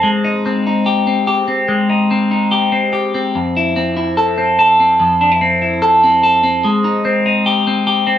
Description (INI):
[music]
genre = indie pop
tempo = 145 BPM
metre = 4/4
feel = straight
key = unclear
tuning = A4 = 440 Hz
[part]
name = clean electric guitar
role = solo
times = 0.0-8.2 s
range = F2 to A4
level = -12 LUFS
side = left 1 dB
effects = phaser
[sound]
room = light reverb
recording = none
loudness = -12 LUFS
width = side -10 dB against mid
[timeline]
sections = 0.0-8.2 A section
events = none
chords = 0.0 Abmaj7; 3.3 Fmaj7; 6.6 Abmaj7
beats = | 0.03 0.44 0.85 1.27 | 1.68 2.10 2.51 2.92 | 3.33 3.75 4.16 4.57 | 4.99 5.40 5.81 6.22 | 6.63 7.04 7.46 7.87